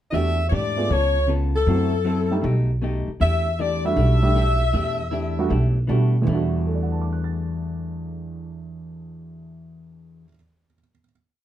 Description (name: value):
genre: jazz, big band swing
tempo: 156 BPM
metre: 4/4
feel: swing 66% on 8ths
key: E minor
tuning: A4 = 439 Hz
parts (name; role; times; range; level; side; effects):
- clear saxophone section; melody; 0.1-5.9 s; A4 to E5; -24 LUFS; left 2 dB; none
- vintage hollow-body jazz guitar; accompaniment; 0.1-10.3 s; B2 to A4; -30 LUFS; left 4 dB; none
- warm baby grand piano; accompaniment; 0.1-11.1 s; E2 to A6; -26 LUFS; right 4 dB; none
- upright bass; bass; 0.1-10.2 s; B1 to B2; -22 LUFS; equal; none
room: light reverb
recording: dark, warm production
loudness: -19 LUFS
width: side -11 dB against mid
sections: 0.1-6.3 A section; 6.3-9.4 final chord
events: none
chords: 0.1 Em11; 0.9 C#7b13; 1.7 F#m7b5; 2.4 B7b13; 3.2 Em11